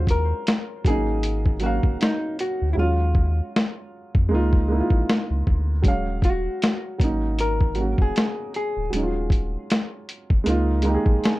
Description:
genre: lo-fi hip hop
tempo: 78 BPM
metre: 4/4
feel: swing 60% on 16ths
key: Eb minor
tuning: A4 = 444 Hz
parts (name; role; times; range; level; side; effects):
- hollow-body jazz guitar; melody; 0.0-11.4 s; Eb4 to C5; -28 LUFS; left 2 dB; tape echo
- dark upright piano; accompaniment; 0.0-11.4 s; Gb3 to Bb5; -26 LUFS; right 2 dB; cassette tape
- warm sub bass; bass; 0.0-11.2 s; D1 to F2; -24 LUFS; equal; none
- lo-fi sampler-style drum kit; drums; 0.1-11.4 s; hi-hat, kick drum, snare drum; -20 LUFS; equal; none
room: light reverb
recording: dark, warm production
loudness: -20 LUFS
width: side -18 dB against mid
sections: 0.0-11.4 A section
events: hi-hats muted 2.8-5.8; upright piano fill 10.5-11.4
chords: 0.0 Ebm11; 0.8 Ab9sus4; 2.8 Ebm11; 4.3 Db69; 5.8 Ebm11; 7.0 Ab9sus4; 8.9 Ebm11; 10.5 Db69

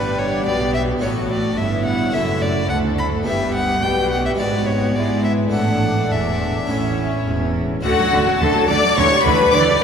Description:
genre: classical, baroque-style concerto movement with solo episodes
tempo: 106 BPM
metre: 4/4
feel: straight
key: D major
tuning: A4 = 441 Hz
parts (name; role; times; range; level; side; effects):
- rich violin; melody; 0.0-9.8 s; F#4 to B5; -22 LUFS; left 1 dB; none
- warm chamber violin section; melody; 0.0-9.8 s; A4 to D6; -24 LUFS; left 7 dB; none
- rich chamber violin section; second line; 0.0-9.8 s; D4 to D5; -23 LUFS; left 1 dB; none
- harpsichord; accompaniment; 0.0-9.8 s; D2 to B4; -27 LUFS; right 1 dB; none
- rich chamber viola section; accompaniment; 0.0-9.8 s; E3 to D4; -25 LUFS; right 1 dB; none
- clear chamber cello section; bass; 0.0-9.6 s; D2 to G#3; -25 LUFS; right 2 dB; none
- clear studio double bass section; bass; 0.0-9.6 s; E1 to G#2; -24 LUFS; right 2 dB; none
room: wet cathedral reverb, RT60 5.2 s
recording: recorded in a church or concert hall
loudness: -16 LUFS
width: side -7 dB against mid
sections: 0.0-7.8 A section; 7.8-9.8 B section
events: none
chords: 0.0 Em7/G; 1.0 A; 2.1 D/F#; 3.3 Em/G; 4.4 E/G#; 5.5 Asus4; 6.7 A; 7.8 D; 9.0 Em7/D

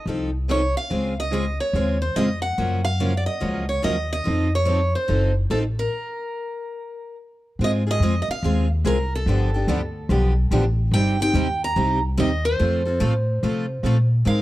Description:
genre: acoustic string swing (jazz manouche)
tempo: 144 BPM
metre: 4/4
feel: swing 64% on 8ths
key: unclear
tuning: A4 = 441 Hz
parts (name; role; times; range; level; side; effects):
- picked steel-string acoustic guitar; melody; 0.0-14.4 s; A4 to Bb5; -26 LUFS; right 1 dB; none
- picked steel-string acoustic guitar; accompaniment; 0.1-14.4 s; C3 to Bb4; -26 LUFS; left 3 dB; none
- picked steel-string acoustic guitar; accompaniment; 0.1-14.4 s; C3 to Bb4; -28 LUFS; right 5 dB; none
- upright bass; bass; 0.1-14.4 s; Gb1 to C3; -22 LUFS; equal; none
room: small room ambience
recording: dry, close 1970s-style studio recording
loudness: -19 LUFS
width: side -16 dB against mid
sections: 0.0-7.6 A section; 7.6-14.4 B section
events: stop 5.9-7.6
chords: 0.0 F7; 0.9 Dbmaj7; 2.6 Gbmaj7; 4.3 F7; 5.9 N.C.; 7.6 Ab6; 9.3 G7; 10.9 Cm/G; 12.6 F

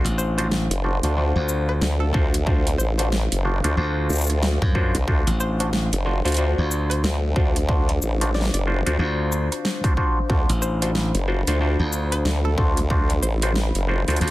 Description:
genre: glitch hop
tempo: 92 BPM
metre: 4/4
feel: swing 60% on 16ths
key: D dorian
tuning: A4 = 439 Hz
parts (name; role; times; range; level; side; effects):
- dark analog pad; sustained chords; 0.0-14.3 s; D4 to B5; -33 LUFS; left 2 dB; chorus, vintage 12-bit sampler grit, sidechain pumping
- overdriven clav; stabs; 0.0-14.3 s; D4 to C5; -27 LUFS; equal; phaser, sidechain pumping, dub echo
- formant-sweep wobble bass; bass; 0.0-14.2 s; F#1 to D2; -22 LUFS; equal; chorus
- glassy slap bass; bass; 0.0-14.3 s; A1 to F#2; -22 LUFS; equal; none
- dubstep drum kit; drums; 0.1-14.3 s; hi-hat, rim click, shaker, snare drum; -27 LUFS; equal; small room ambience
- woody wave-folded pluck; melody; 0.2-13.5 s; A4 to D5; -34 LUFS; left 2 dB; chorus, dub echo
- electronic kick drum; drums; 2.1-13.1 s; none; -21 LUFS; equal; small room ambience
room: little or no reverb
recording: dense, heavily limited modern master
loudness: -19 LUFS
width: side -17 dB against mid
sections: 0.0-14.3 A section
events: none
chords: 0.0 D7#9

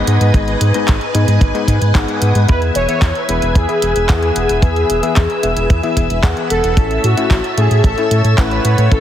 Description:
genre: italo disco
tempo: 112 BPM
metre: 4/4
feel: straight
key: E major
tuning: A4 = 440 Hz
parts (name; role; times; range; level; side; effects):
- string machine, full ensemble; sustained chords; 0.0-9.0 s; B4 to E6; -20 LUFS; equal; ensemble chorus
- warm electric grand piano; stabs; 0.0-9.0 s; G#2 to F#5; -21 LUFS; left 5 dB; low-pass filter
- round analog bass; bass; 0.0-9.0 s; E1 to A2; -16 LUFS; equal; tube saturation
- house drum kit; drums; 0.1-9.0 s; handclaps, hi-hat; -24 LUFS; right 1 dB; overdrive
- kick drum; drums; 0.3-9.0 s; none; -13 LUFS; equal; none
- analog synth brass; melody; 2.5-9.0 s; F#4 to C#5; -18 LUFS; equal; chorus, tape echo
room: light reverb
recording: heavily compressed radio sound, multiband compression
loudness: -12 LUFS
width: side -11 dB against mid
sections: 0.0-9.0 A section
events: none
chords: 0.0 G#m; 2.5 E; 6.8 A

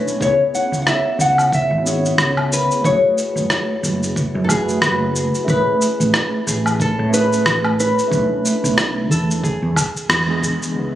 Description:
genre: sunset chillout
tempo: 91 BPM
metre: 4/4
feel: swing 58% on 16ths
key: A major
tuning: A4 = 440 Hz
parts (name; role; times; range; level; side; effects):
- nylon-string guitar; melody; 0.0-10.4 s; G#4 to F#5; -20 LUFS; left 1 dB; tape echo
- mellow tine electric piano; accompaniment; 0.0-11.0 s; E3 to C#5; -22 LUFS; right 1 dB; medium stereo tremolo, auto-pan, ping-pong delay
- electronic shaker, rim click and woodblock; drums; 0.1-10.7 s; none; -20 LUFS; equal; low-pass filter on perc, low-pass filter on snare, low-pass filter on room
- woody fretless electric bass; bass; 0.2-11.0 s; F#1 to A2; -21 LUFS; equal; none
- electronic kick drum; drums; 0.2-10.6 s; none; -25 LUFS; equal; none
- wind-like tuned noise texture; texture; 10.9-11.0 s; E4 to E5; -44 LUFS; right 2 dB; none
room: moderate lush hall reverb, RT60 2.5 s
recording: recorded on a phone in the room, club reverb, compression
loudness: -15 LUFS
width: side -12 dB against mid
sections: 0.0-10.8 A section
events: band accent 10.1-10.4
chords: 0.2 C#m7; 2.8 F#m11; 5.5 Amaj9; 8.1 Bm11; 9.4 E7

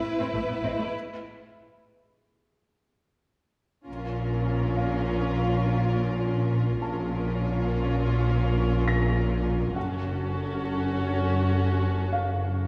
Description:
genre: cinematic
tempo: free time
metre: none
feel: none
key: Bb harmonic minor from 3.9 s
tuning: A4 = 445 Hz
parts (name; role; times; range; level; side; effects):
- rich symphonic violin section; melody; 0.0-12.7 s; A4 to B4; -41 LUFS; equal; none
- dark symphonic violin section; second line; 0.0-12.7 s; E4 to Gb4; -37 LUFS; equal; none
- felt-muted upright piano; texture; 0.0-12.7 s; B4 to Bb6; -39 LUFS; equal; none
- warm symphonic viola section; accompaniment; 0.2-12.7 s; A3 to Db4; -35 LUFS; equal; none
- rich symphonic cello section; bass; 0.2-12.7 s; Gb2 to Bb2; -31 LUFS; equal; none
- rich symphonic double bass section; bass; 0.3-12.7 s; Gb1 to Bb1; -31 LUFS; equal; none
room: wet scoring stage reverb, RT60 1.7 s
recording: heard from further back in the room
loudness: -26 LUFS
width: mono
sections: 0.0-3.9 A section; 3.9-12.7 B section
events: break 0.9-3.9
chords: 0.0 Amadd9; 0.9 N.C.; 3.9 Bbm; 9.8 Gbm

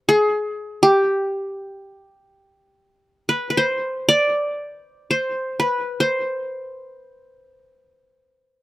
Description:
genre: Arabic maqam ensemble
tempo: free time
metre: none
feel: none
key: unclear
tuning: A4 = 439 Hz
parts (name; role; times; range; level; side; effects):
- qanun; solo; 0.1-7.7 s; G4 to D5; -18 LUFS; equal; none
room: little or no reverb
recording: recorded outdoors, with no room sound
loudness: -19 LUFS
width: side -17 dB against mid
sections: 0.0-2.7 A section; 2.7-8.6 A section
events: none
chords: none

